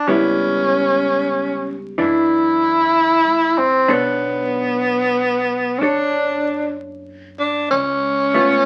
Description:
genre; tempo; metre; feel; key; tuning
jazz ballad; 63 BPM; 4/4; swing 66% on 8ths; unclear; A4 = 440 Hz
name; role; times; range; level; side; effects
breathy tenor saxophone; melody; 0.0-8.7 s; B3 to E4; -19 LUFS; equal; none
hollow-body jazz guitar; accompaniment; 0.0-8.7 s; E3 to C#5; -23 LUFS; equal; none
upright bass; bass; 0.1-8.7 s; F#1 to A2; -41 LUFS; equal; none
room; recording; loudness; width
wet studio reverb, RT60 0.5 s; very old 78 rpm record, vinyl crackle; -18 LUFS; mono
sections
0.0-8.7 A section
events
none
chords
0.1 C#m7b5; 2.0 Dadd9/F#; 3.9 Bm9; 7.7 C#aug7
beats
| 0.08 1.03 1.98 2.93 | 3.88 4.84 5.79 6.75 | 7.70

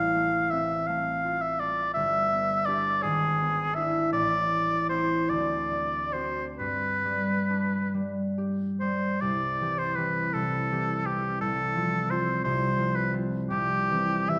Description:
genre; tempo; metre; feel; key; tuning
classical, romantic duo for oboe and harp; 43-60 BPM (dotted quarters); 6/8; rubato; C major; A4 = 440 Hz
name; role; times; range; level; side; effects
clear oboe; melody; 0.0-14.4 s; G4 to F5; -29 LUFS; equal; none
concert harp; accompaniment; 0.0-14.4 s; G1 to G4; -31 LUFS; equal; none
room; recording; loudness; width
wet recital hall reverb, RT60 1.6 s; none; -27 LUFS; mono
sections
0.0-9.2 A section; 9.2-14.4 B section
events
none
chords
0.0 F/A; 1.9 G; 3.0 E7/G#; 4.1 Am; 5.3 D7; 6.6 G; 9.2 C; 11.4 F/C; 13.5 C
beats
0.86 | 1.94 3.01 | 4.12 5.29 | 6.59 7.93 | 9.22 10.34 | 11.41 12.44 | 13.50

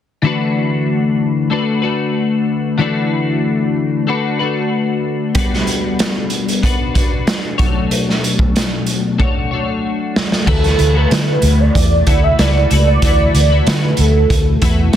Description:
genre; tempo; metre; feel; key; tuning
indie pop, bedroom pop; 94 BPM; 4/4; straight; D major; A4 = 439 Hz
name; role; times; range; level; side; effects
twelve-string electric guitar; accompaniment; 0.2-15.0 s; B2 to C#5; -17 LUFS; left 3 dB; analog chorus, warbly pitch drift
raw garage drum kit; drums; 5.3-15.0 s; crash cymbal, hi-hat, kick drum, snare drum; -16 LUFS; right 1 dB; none
warm velvety synth lead; melody; 10.5-14.9 s; A4 to E5; -18 LUFS; right 3 dB; analog chorus, slapback echo
vintage muted fingered electric bass; bass; 10.5-15.0 s; C#2 to D3; -14 LUFS; right 1 dB; none
room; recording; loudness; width
small room ambience; dense, heavily limited modern master; -13 LUFS; side -10 dB against mid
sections
0.2-10.5 A section; 10.5-15.0 B section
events
drum fill 9.2-10.5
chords
0.2 D69; 5.4 Gmaj7; 7.6 Bm9; 10.5 D69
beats
| 0.23 0.87 1.51 2.15 | 2.79 3.43 4.07 4.71 | 5.35 5.99 6.63 7.27 | 7.91 8.55 9.19 9.83 | 10.47 11.11 11.75 12.38 | 13.02 13.66 14.30 14.94

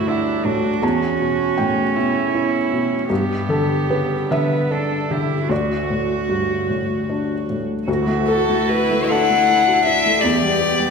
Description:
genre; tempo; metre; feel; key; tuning
neoclassical piano and strings; 51 BPM (dotted quarters); 6/8; uneven beats, rubato; D major; A4 = 440 Hz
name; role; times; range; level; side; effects
warm cello; second line; 0.0-10.9 s; B3 to F#4; -23 LUFS; right 5 dB; none
felt-muted upright piano; accompaniment; 0.0-10.9 s; D2 to B5; -20 LUFS; left 1 dB; none
warm viola; accompaniment; 0.0-10.9 s; D4 to B4; -26 LUFS; right 5 dB; none
rich violin; melody; 8.3-10.9 s; A4 to F#5; -17 LUFS; left 6 dB; none
room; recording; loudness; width
wet recital hall reverb, RT60 1.4 s; recorded in a church or concert hall; -16 LUFS; side -5 dB against mid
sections
0.0-7.9 A section; 7.9-10.9 A section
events
none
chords
0.0 Dadd9; 0.8 Em; 3.1 G; 5.5 D; 7.9 Dadd9; 10.2 Em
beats
| 0.83 1.96 | 3.10 4.31 | 5.50 6.69 | 7.88 9.10 | 10.23

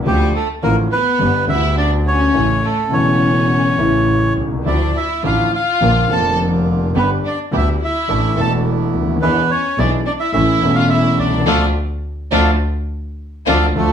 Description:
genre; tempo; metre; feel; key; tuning
tango; 105 BPM; 4/4; rubato; D harmonic minor; A4 = 440 Hz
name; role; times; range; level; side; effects
warm concert grand piano; accompaniment; 0.0-13.9 s; E1 to A4; -18 LUFS; left 1 dB; none
clear double bass; bass; 0.0-13.9 s; E1 to E2; -19 LUFS; equal; none
bandoneon; melody; 0.1-13.9 s; A3 to A5; -19 LUFS; right 1 dB; none
rich studio violin section; second line; 0.1-13.9 s; G3 to A4; -22 LUFS; left 2 dB; none
bandoneon; stabs; 4.7-13.9 s; F3 to G4; -27 LUFS; right 7 dB; none
room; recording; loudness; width
moderate studio reverb, RT60 0.7 s; studio reverb; -14 LUFS; side -8 dB against mid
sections
0.0-13.8 A section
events
band accent 11.5-13.8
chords
0.1 Dm; 1.2 G; 2.4 A; 4.7 Dmadd9; 5.8 Bb; 7.0 G; 8.1 Asus4; 9.2 E7; 10.3 A; 11.5 Dm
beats
| 0.06 0.63 1.20 1.78 | 2.35 2.92 3.50 4.08 | 4.66 5.24 5.81 6.39 | 6.96 7.53 8.09 8.66 | 9.22 9.78 10.34 10.90 | 11.46 12.03 12.60 13.18 | 13.76

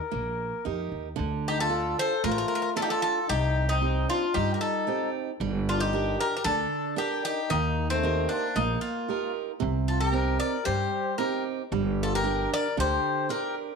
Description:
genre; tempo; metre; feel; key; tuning
greek folk, Greek bouzouki band; 114 BPM; 4/4; straight; D phrygian; A4 = 442 Hz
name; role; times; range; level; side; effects
Greek bouzouki; melody; 0.0-13.5 s; C4 to D5; -29 LUFS; left 1 dB; none
mellow accordion; second line; 0.0-13.6 s; A3 to Bb4; -32 LUFS; left 9 dB; none
picked steel-string acoustic guitar; accompaniment; 0.1-13.7 s; C3 to Bb4; -31 LUFS; right 10 dB; none
upright bass; bass; 0.1-13.0 s; G1 to G2; -30 LUFS; equal; none
room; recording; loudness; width
moderate echo chamber reverb, RT60 1.2 s, small room reverb; 1960s-style stereo with parts hard left and right; -25 LUFS; side -5 dB against mid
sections
0.0-1.2 A section; 1.2-13.8 B section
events
none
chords
0.0 Eb; 1.2 Dm; 3.3 Cm; 5.4 Gm; 7.5 Eb; 9.6 Cm; 11.7 Gm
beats
0.13 0.66 | 1.18 1.71 2.24 2.77 | 3.29 3.82 4.35 4.88 | 5.40 5.93 6.46 6.98 | 7.51 8.04 8.56 9.09 | 9.62 10.14 10.67 11.20 | 11.72 12.25 12.77 13.30

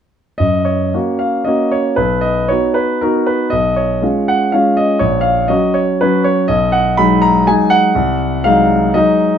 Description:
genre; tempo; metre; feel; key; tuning
classical, romantic triple-time dance for piano with dotted rhythms; 108-133 BPM; 3/4; rubato; F# major; A4 = 440 Hz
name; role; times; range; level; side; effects
clear grand piano; solo; 0.4-9.4 s; A#1 to B5; -12 LUFS; equal; none
room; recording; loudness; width
light reverb; dark, warm production; -12 LUFS; side -8 dB against mid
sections
0.4-9.4 A section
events
none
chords
0.4 F#; 2.0 B; 3.5 C#7/B; 5.0 F#/A#; 6.5 G#m7/B; 7.9 G#7/B#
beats
| 0.40 0.94 1.47 | 1.98 2.49 3.02 | 3.52 4.02 4.53 | 4.99 5.48 6.01 | 6.48 6.97 7.46 | 7.94 8.44 8.94

